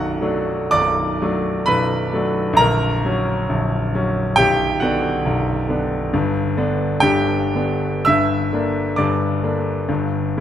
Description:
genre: classical, romantic nocturne for solo piano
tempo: 56-70 BPM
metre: 4/4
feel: rubato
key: unclear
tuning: A4 = 442 Hz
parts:
  - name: clear concert grand piano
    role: solo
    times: 0.0-10.4 s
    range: A#0 to E6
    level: -17 LUFS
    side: equal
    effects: none
room: moderate concert hall reverb, RT60 2.4 s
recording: none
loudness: -17 LUFS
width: side -10 dB against mid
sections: 0.0-10.4 A section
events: none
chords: 0.0 Bm7; 2.6 F#/A#; 4.4 Bm; 6.1 G; 8.1 Em7b5/G

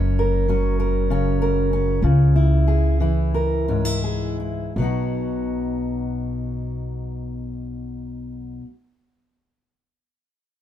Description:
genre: folk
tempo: 80-101 BPM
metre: 4/4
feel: straight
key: B major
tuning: A4 = 440 Hz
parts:
  - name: fingerpicked steel-string acoustic guitar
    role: accompaniment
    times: 0.0-8.7 s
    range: F#2 to A#4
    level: -23 LUFS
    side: left 1 dB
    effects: none
  - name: upright bass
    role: bass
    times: 0.0-8.6 s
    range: F#1 to C#2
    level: -22 LUFS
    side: equal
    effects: none
room: little or no reverb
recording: echo-heavy mix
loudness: -19 LUFS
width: side -11 dB against mid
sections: 0.0-4.8 A section; 4.8-7.8 B section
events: slowing down 0.0-4.8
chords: 0.0 F#; 2.0 C#m; 4.8 B

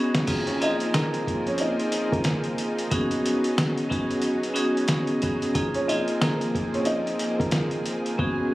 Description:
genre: hip hop, boom-bap hip-hop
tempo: 91 BPM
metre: 4/4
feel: swing 59% on 16ths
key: Bb minor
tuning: A4 = 440 Hz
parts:
  - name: vibraphone with hard mallets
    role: accompaniment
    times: 0.0-8.5 s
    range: Bb3 to Ab4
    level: -26 LUFS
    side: equal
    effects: high-pass filter, low-pass filter
  - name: lush unison pad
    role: sustained chords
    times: 0.0-8.5 s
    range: F3 to Ab4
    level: -31 LUFS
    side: equal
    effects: chorus, high-pass filter, low-pass filter
  - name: lo-fi sampler-style drum kit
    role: drums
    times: 0.1-8.4 s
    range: crash cymbal, hi-hat, kick drum, snare drum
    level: -27 LUFS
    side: equal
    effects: overdrive
  - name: dark upright piano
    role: melody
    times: 0.5-8.1 s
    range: Bb3 to Eb5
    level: -28 LUFS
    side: equal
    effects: high-pass filter, low-pass filter, ping-pong delay
room: light reverb, digital ambience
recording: recorded on a phone in the room, club reverb, vinyl crackle, compression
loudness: -22 LUFS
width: side -17 dB against mid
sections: 0.3-8.5 A section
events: drum fill 0.0; hi-hats muted 8.2-8.5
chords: 0.3 Bb9sus4; 2.9 Db9sus4; 5.6 Bb9sus4

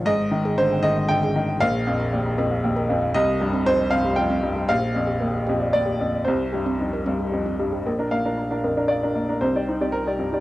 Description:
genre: neoclassical piano and strings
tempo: 116 BPM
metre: 3/4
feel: rubato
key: C minor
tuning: A4 = 440 Hz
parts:
  - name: clear upright piano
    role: accompaniment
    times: 0.0-10.4 s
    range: Bb1 to G5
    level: -21 LUFS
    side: left 1 dB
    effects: cassette tape
  - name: rich double bass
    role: bass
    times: 0.0-10.4 s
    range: Ab1 to C2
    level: -29 LUFS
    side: equal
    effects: none
  - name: soft round pluck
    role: arpeggios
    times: 0.1-10.4 s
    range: C4 to Bb5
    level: -28 LUFS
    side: right 2 dB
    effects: chorus, cassette tape, analog delay
room: moderate spring reverb, RT60 2.1 s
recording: home recording on cassette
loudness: -20 LUFS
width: side -16 dB against mid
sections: 0.0-7.9 A section; 7.9-10.4 B section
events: none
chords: 0.1 Abmaj7; 1.6 Bb5; 3.1 Cm; 4.7 Gm7/Bb; 6.3 C5; 7.9 Bb; 9.4 Cmadd9

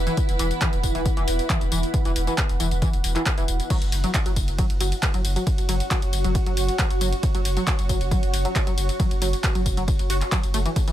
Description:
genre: driving peak-time techno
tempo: 136 BPM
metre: 4/4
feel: straight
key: unclear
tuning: A4 = 440 Hz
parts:
  - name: saturated sub bass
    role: bass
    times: 0.0-10.9 s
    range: E1 to F#1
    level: -25 LUFS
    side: equal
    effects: overdrive, sidechain pumping, low-pass filter
  - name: granular cloud pad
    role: texture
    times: 0.0-10.9 s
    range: E4 to F#5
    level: -29 LUFS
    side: right 2 dB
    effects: built-in reverb, sidechain pumping
  - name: tight sequenced synth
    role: riff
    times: 0.1-10.9 s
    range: E3 to F#4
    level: -30 LUFS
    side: left 1 dB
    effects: chorus, overdrive, sidechain pumping, tape echo
  - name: punchy analog drum machine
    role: drums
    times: 0.1-10.9 s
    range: crash cymbal, handclaps, hi-hat, ride cymbal, tambourine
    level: -29 LUFS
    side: left 1 dB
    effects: sidechain pumping on hats, sidechain pumping on perc, sidechain pumping on cymbals
  - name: electronic kick drum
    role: drums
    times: 0.2-10.9 s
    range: none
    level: -23 LUFS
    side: equal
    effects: none
room: digital ambience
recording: none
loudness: -20 LUFS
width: side -12 dB against mid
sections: 0.0-10.9 A section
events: none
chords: 0.0 E5; 3.7 F#5

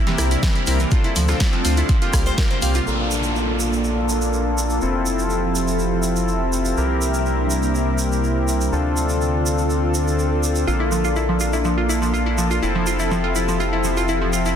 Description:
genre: progressive house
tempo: 123 BPM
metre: 4/4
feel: straight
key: F major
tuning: A4 = 440 Hz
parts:
  - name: airy breathy pad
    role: sustained chords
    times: 0.0-14.6 s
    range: C3 to E5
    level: -25 LUFS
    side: right 1 dB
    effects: chorus, phaser, sidechain pumping
  - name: glassy wavetable pluck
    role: arpeggios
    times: 0.0-2.8, 10.7-14.5 s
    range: E3 to F5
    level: -24 LUFS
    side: right 1 dB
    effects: chorus, sidechain pumping, dub echo
  - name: soft supersaw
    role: stabs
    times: 0.1-14.5 s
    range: Bb3 to Bb4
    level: -23 LUFS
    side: left 3 dB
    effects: sidechain pumping, low-pass filter, dub echo
  - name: deep house drum kit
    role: drums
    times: 0.1-2.8 s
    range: hi-hat, rim click, snare drum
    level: -27 LUFS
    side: left 1 dB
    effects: sidechain pumping on hats
  - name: round analog bass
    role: bass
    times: 0.2-14.6 s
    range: F1 to D2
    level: -23 LUFS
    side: equal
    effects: sidechain pumping
  - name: tube shaker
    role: percussion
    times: 0.2-14.5 s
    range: none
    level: -30 LUFS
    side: right 4 dB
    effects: none
  - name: electronic kick drum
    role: drums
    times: 0.4-2.5 s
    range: none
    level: -18 LUFS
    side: equal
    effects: none
  - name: downlifter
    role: sound effects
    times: 2.9-6.8 s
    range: none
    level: -30 LUFS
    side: equal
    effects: none
room: light reverb, digital ambience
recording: dense, heavily limited modern master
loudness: -18 LUFS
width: side -8 dB against mid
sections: 0.0-2.9 A section; 2.9-14.6 B section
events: filter sweep on supersaw synth 2.9-14.6; filter sweep on analog synth pad 2.9-14.6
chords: 0.0 C7; 0.9 Dm7; 1.9 C7sus4; 2.9 Bbmaj7; 4.8 Fmaj7; 6.8 C7; 8.7 Dm7; 10.7 Bbmaj7; 12.6 Fmaj7

